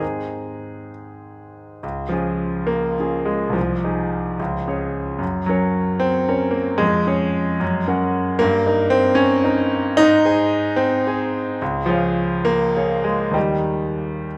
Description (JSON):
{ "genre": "classical, romantic character piece for solo piano", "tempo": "64-78 BPM (dotted quarters)", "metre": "6/8", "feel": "rubato", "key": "Db major, Ab major from 8.4 s", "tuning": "A4 = 437 Hz", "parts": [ { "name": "clear concert grand piano", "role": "solo", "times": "0.0-14.4 s", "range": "C2 to Bb5", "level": "-20 LUFS", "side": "equal", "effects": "none" } ], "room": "wet recital hall reverb, RT60 1.5 s", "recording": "dark, warm production", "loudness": "-20 LUFS", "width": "mono", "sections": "0.0-1.8 A section; 1.8-14.4 B section", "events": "none", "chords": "0.0 Ab; 1.8 Db; 3.6 Ab/C; 4.4 Db; 5.2 Gb; 6.8 Db/F; 7.6 Gb; 8.4 Eb7/G; 10.0 Ab; 11.6 Db; 13.4 Eb" }